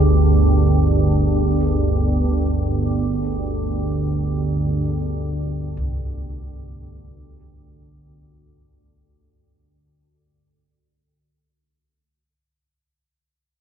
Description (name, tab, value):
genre	dark ambient drone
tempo	free time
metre	none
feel	none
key	unclear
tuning	A4 = 440 Hz
part	gamelan-type bossed gongs	arpeggios	0.0-12.3 s	C2 to Ab4	-31 LUFS	right 4 dB	diffuse ambient delay
part	organ-like drone	drone	0.0-10.1 s	G1 to D2	-18 LUFS	right 1 dB	ensemble chorus, built-in reverb
room	wet cathedral reverb, RT60 5.3 s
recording	none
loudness	-17 LUFS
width	side -8 dB against mid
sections	0.0-10.0 A section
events	fade-out 0.0-10.0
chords	0.0 Abmaj7#11/G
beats	free time